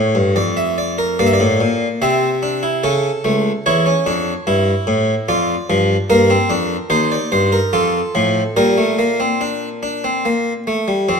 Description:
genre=classical, baroque-style 3-part fugue for harpsichord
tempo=73 BPM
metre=3/4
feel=straight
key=Bb major from 6.1 s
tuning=A4 = 440 Hz
part: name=harpsichord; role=solo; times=0.0-11.2 s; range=C#2 to E5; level=-14 LUFS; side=equal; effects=none
room=wet recital hall reverb, RT60 1.4 s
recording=close, detailed microphones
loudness=-14 LUFS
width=side -6 dB against mid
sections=0.0-1.2 A section; 1.2-11.1 B section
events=none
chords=0.4 Dm/F; 1.2 E7(b5, no3); 2.8 A/C#; 3.7 A7/E; 5.3 Dm/F; 6.1 Gm; 6.9 Eb; 7.7 F; 8.6 Bb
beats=0.36 | 1.19 2.01 2.83 | 3.65 4.47 5.29 | 6.10 6.91 7.73 | 8.56 9.41 10.25 | 11.09

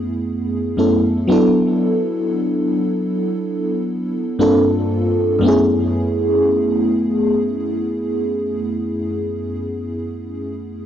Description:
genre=R&B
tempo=58 BPM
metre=4/4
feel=straight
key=F# minor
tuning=A4 = 440 Hz
part: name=FM electric piano with soft pad layer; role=solo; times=0.0-10.9 s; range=F#2 to A4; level=-16 LUFS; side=equal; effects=chorus, tremolo, analog delay
room=digital ambience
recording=dry, gritty hardware recording, transformer saturation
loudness=-16 LUFS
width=side -10 dB against mid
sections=0.0-5.4 A section; 5.4-9.6 B section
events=none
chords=0.0 F#m11; 1.3 E9sus4; 4.4 Gm11; 5.4 F#m11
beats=0.26 | 1.29 2.33 3.36 4.40 | 5.43 6.47 7.50 8.54

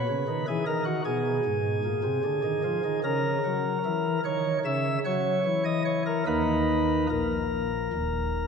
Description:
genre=classical, chorale-style piece for pipe organ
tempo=75 BPM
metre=4/4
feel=rubato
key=unclear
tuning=A4 = 440 Hz
part: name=pipe organ, sparkling flutes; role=solo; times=0.0-8.5 s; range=D#1 to E5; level=-24 LUFS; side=equal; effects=none
room=wet church reverb, RT60 2.5 s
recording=minimal, uncompressed stereo recording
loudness=-24 LUFS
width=side -6 dB against mid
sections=0.0-8.5 A section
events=none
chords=0.0 Bmaj13; 1.5 A#7/G#; 3.0 A#dim/C#; 6.3 D#5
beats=0.67 1.45 2.24 | 3.04 3.84 4.64 5.44 | 6.26 7.09 7.92

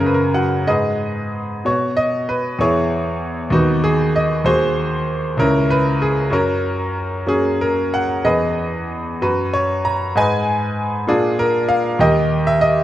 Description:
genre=classical, lyrical solo piano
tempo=64 BPM (dotted quarters)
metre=6/8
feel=rubato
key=unclear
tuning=A4 = 442 Hz
part: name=bright concert grand piano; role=solo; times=0.0-12.8 s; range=C#2 to A#5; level=-16 LUFS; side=equal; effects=none
room=moderate concert hall reverb, RT60 2.2 s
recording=dark, warm production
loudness=-16 LUFS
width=side -13 dB against mid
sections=0.7-12.8 A section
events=none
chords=0.0 F#sus2; 0.7 G#m; 1.7 B5; 2.6 E; 3.5 B/D#; 4.4 G#7/D#; 5.4 C#m; 6.3 F#; 8.2 E; 9.2 N.C.; 10.2 G#m; 11.1 A#; 12.0 D#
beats=| 0.68 1.65 | 2.59 3.52 | 4.45 5.37 | 6.30 7.26 | 8.24 9.21 | 10.16 11.08 | 12.00

